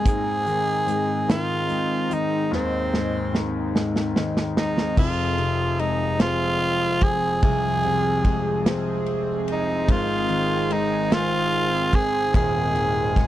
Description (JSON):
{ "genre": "six-eight pop ballad", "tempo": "49 BPM (dotted quarters)", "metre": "6/8", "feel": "straight", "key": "F minor", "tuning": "A4 = 440 Hz", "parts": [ { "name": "raspy tenor saxophone", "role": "melody", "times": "0.0-13.3 s", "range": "C4 to Ab4", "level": "-23 LUFS", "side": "right 1 dB", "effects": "none" }, { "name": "warm concert grand piano", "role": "accompaniment", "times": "0.0-13.3 s", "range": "Eb1 to C4", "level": "-26 LUFS", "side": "left 4 dB", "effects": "none" }, { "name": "chorused pulse-width pad", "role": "sustained chords", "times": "0.0-13.3 s", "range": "F2 to Ab4", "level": "-28 LUFS", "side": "right 2 dB", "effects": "none" }, { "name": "modern studio drum kit", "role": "drums", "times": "0.1-13.3 s", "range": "crash cymbal, hi-hat, kick drum, ride cymbal, snare drum", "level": "-22 LUFS", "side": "equal", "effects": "none" } ], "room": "little or no reverb", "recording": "dry, close 1970s-style studio recording", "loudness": "-20 LUFS", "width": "side -13 dB against mid", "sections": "0.0-5.0 A section; 5.0-13.3 B section", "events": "drum fill 2.5-5.0", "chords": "0.1 Ab; 5.0 Fm; 9.9 Ab" }